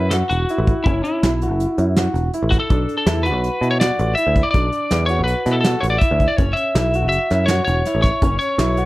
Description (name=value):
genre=progressive instrumental, band music in an uneven meter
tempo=163 BPM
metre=5/4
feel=straight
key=F# minor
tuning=A4 = 440 Hz
part: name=lightly driven lead guitar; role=melody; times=0.0-8.9 s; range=E4 to E5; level=-21 LUFS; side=left 1 dB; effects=slapback echo
part: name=warm concert grand piano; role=arpeggios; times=0.0-8.9 s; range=C#4 to F#4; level=-24 LUFS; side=right 1 dB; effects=none
part: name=picked electric bass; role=bass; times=0.0-8.9 s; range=E1 to B2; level=-20 LUFS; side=equal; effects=none
part: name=soft brush drum kit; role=drums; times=0.1-8.9 s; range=hi-hat, kick drum, snare drum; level=-20 LUFS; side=equal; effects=none
room=small room ambience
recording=none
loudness=-16 LUFS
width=side -18 dB against mid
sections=0.0-8.9 A section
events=none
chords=0.0 F#7(no3); 2.7 Bm7; 6.4 F#7(no3)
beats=0.12 0.49 | 0.85 1.23 1.59 1.96 2.33 | 2.70 3.07 3.44 3.81 4.18 | 4.54 4.91 5.28 5.65 6.02 | 6.39 6.75 7.12 7.49 7.86 | 8.23 8.60